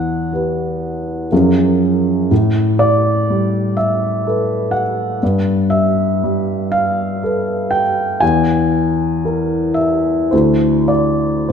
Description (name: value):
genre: classical, impressionist solo piano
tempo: 49-64 BPM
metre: 3/4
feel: rubato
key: unclear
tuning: A4 = 436 Hz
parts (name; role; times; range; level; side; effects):
- warm baby grand piano; solo; 0.0-11.5 s; D2 to G#5; -14 LUFS; equal; none
room: moderate concert hall reverb, RT60 1.9 s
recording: minimal, uncompressed stereo recording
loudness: -14 LUFS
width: side -7 dB against mid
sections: 0.0-11.5 A section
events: none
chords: 0.0 Em; 1.3 F#maj9; 2.3 A9sus4; 5.2 G9; 8.2 E; 10.3 D9